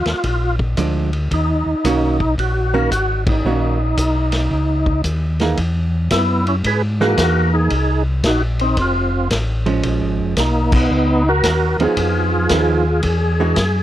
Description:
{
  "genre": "soul jazz organ trio",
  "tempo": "112 BPM",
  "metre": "4/4",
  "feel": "swing 66% on 8ths",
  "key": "Eb minor",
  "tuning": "A4 = 445 Hz",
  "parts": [
    { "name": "percussive tonewheel organ", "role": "melody", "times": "0.0-13.8 s", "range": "Bb3 to B4", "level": "-19 LUFS", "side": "equal", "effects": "slow rotary speaker, overdrive, chorus vibrato" },
    { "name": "mellow tonewheel organ", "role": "bass", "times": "0.0-13.8 s", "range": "F1 to G#2", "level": "-19 LUFS", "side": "left 1 dB", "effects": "chorus vibrato, slow rotary speaker" },
    { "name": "vintage drum kit", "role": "drums", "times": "0.1-13.7 s", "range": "crash cymbal, hi-hat, kick drum, ride cymbal, snare drum", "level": "-23 LUFS", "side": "left 1 dB", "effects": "none" },
    { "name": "archtop guitar, miked and amplified", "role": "accompaniment", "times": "0.8-13.6 s", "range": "Eb3 to Ab4", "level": "-19 LUFS", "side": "right 5 dB", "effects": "none" }
  ],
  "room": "light reverb",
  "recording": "dry, close 1970s-style studio recording",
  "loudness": "-15 LUFS",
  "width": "side -13 dB against mid",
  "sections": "0.0-5.6 A section; 5.6-13.8 B section",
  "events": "band accent 3.2, 10.6",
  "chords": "0.2 Bb7; 1.3 Ebm7; 5.6 Emaj9#11; 7.7 Ab9; 8.8 F; 9.8 Bbm7; 12.0 Fm7b5; 13.0 E9"
}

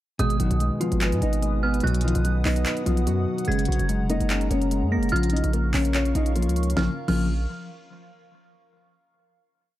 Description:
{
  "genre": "hip hop, trap",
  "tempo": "146 BPM",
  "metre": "4/4",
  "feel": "half-time",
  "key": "Bb phrygian",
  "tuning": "A4 = 440 Hz",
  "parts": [
    { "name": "mellow electric guitar", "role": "melody", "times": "0.2-7.3 s", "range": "F3 to Eb5", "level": "-27 LUFS", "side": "left 1 dB", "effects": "low-pass filter, tape echo" },
    { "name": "dark detuned synth bell", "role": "second line", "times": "0.2-7.3 s", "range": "Eb6 to Bb6", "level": "-32 LUFS", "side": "right 3 dB", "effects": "chorus, tape echo" },
    { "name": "felt-muted upright piano", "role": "accompaniment", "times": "0.2-7.3 s", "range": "Cb3 to Db5", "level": "-28 LUFS", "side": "left 2 dB", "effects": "low-pass filter" },
    { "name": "dark analog pad", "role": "sustained chords", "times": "0.6-7.0 s", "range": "Ab4 to Eb6", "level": "-38 LUFS", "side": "right 2 dB", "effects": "chorus, phaser" },
    { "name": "distorted 808-style bass", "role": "bass", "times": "0.2-7.5 s", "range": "F1 to Ab2", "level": "-24 LUFS", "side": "equal", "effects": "distortion" },
    { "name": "trap drum kit", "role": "drums", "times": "0.2-7.2 s", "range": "crash cymbal, handclaps, hi-hat, snare drum", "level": "-32 LUFS", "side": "equal", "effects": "none" }
  ],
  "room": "little or no reverb",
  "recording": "dark, warm production",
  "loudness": "-21 LUFS",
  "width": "side -14 dB against mid",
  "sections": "0.2-6.8 hook; 6.8-8.4 final chord",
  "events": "none",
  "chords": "0.2 Abm; 1.8 B; 3.5 Gbadd9; 5.1 Bbm"
}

